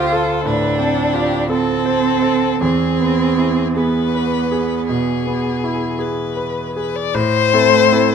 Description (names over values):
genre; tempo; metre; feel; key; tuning
classical, slow romantic movement for piano trio; 51-60 BPM (dotted quarters); 12/8; rubato; unclear; A4 = 439 Hz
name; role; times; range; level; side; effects
rich violin; melody; 0.0-8.1 s; G4 to D5; -20 LUFS; left 10 dB; none
rich cello; second line; 0.0-8.1 s; A3 to F4; -18 LUFS; right 6 dB; none
clear concert grand piano; accompaniment; 0.0-8.1 s; D2 to C5; -19 LUFS; equal; none
room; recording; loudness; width
light reverb; close, detailed microphones; -15 LUFS; side -7 dB against mid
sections
0.0-7.1 A section; 7.1-8.1 B section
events
none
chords
0.0 Dm7; 2.6 E; 7.1 Am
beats
0.46 1.51 | 2.62 3.77 4.89 6.00 | 7.15